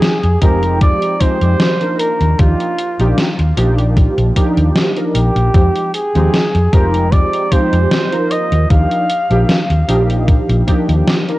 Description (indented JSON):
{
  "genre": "vaporwave",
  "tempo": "76 BPM",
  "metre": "4/4",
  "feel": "swing 53% on 16ths",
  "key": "Eb major",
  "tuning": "A4 = 440 Hz",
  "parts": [
    { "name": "mellow flugelhorn", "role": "melody", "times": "0.0-9.8 s", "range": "F4 to F5", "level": "-19 LUFS", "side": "equal", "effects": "tape echo" },
    { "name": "warbly lo-fi synth keys", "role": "accompaniment", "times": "0.0-11.4 s", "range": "F3 to Bb4", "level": "-18 LUFS", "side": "right 1 dB", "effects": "ensemble chorus" },
    { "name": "gated 80s digital drum machine", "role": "drums", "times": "0.0-11.4 s", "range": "hi-hat, snare drum", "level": "-18 LUFS", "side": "equal", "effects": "gated reverb, gated reverb snare, vintage 12-bit sampler grit, studio reverb" },
    { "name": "hollow-body short-scale fingered electric bass", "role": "bass", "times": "0.2-11.0 s", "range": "F1 to F2", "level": "-14 LUFS", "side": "equal", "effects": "tube saturation" },
    { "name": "electronic kick drum", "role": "drums", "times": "0.4-10.8 s", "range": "none", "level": "-12 LUFS", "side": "equal", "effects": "vintage 12-bit sampler grit, studio reverb" }
  ],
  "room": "light reverb",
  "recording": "worn, warbling old tape, cassette tape, warbly pitch drift, nothing above 10.8 kHz",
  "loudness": "-11 LUFS",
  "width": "side -17 dB against mid",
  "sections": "0.0-11.4 A section",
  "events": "none",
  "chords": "0.0 Fm9; 2.0 Ebmaj9; 5.5 Fm9; 8.3 Ebmaj9"
}